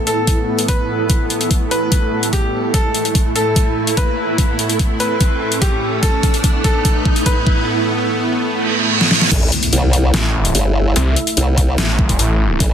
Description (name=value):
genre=heavy wobble dubstep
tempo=146 BPM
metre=4/4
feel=half-time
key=unclear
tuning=A4 = 439 Hz
part: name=supersaw pad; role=sustained chords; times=0.0-12.7 s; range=A2 to E5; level=-22 LUFS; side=equal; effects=sidechain pumping, low-pass filter
part: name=riser, reverse cymbal and impact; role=sound effects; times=0.1-11.0 s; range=none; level=-23 LUFS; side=right 2 dB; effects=none
part: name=granular cloud pad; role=texture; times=0.0-7.7 s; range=E4 to E6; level=-24 LUFS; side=right 3 dB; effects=built-in reverb, sidechain pumping
part: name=bright grand piano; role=melody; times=0.1-7.7 s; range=G4 to B4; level=-22 LUFS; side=left 1 dB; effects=digital delay
part: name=dubstep drum kit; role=drums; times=0.1-12.7 s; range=crash cymbal, hi-hat, snare drum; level=-19 LUFS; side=left 2 dB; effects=overdrive
part: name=electronic kick drum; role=drums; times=0.3-12.7 s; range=none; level=-16 LUFS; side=equal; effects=overdrive
part: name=formant-sweep wobble bass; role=bass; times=9.3-12.7 s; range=G1 to C2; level=-15 LUFS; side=equal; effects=chorus, overdrive
part: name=snarling distorted saw bass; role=bass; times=10.1-12.6 s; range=A1 to C2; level=-16 LUFS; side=equal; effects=distortion, overdrive
room=light reverb, digital ambience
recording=dense, heavily limited modern master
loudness=-13 LUFS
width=side -8 dB against mid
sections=0.0-9.3 A section; 9.3-12.7 B section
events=build-up 0.0-9.3; filter sweep on supersaw synth 0.0-9.3; riser 0.1-7.7; drum fill 2.7-7.7, 9.0-9.3; reverse cymbal 8.6-9.3; drop 9.3-12.7; impact 9.3-11.0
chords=0.0 A5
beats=0.27 0.69 | 1.10 1.51 1.92 2.33 | 2.74 3.15 3.56 3.97 | 4.38 4.79 5.21 5.62 | 6.03 6.44 6.85 7.26 | 7.67 8.08 8.49 8.90 | 9.31 9.73 10.14 10.55 | 10.96 11.37 11.78 12.19 | 12.60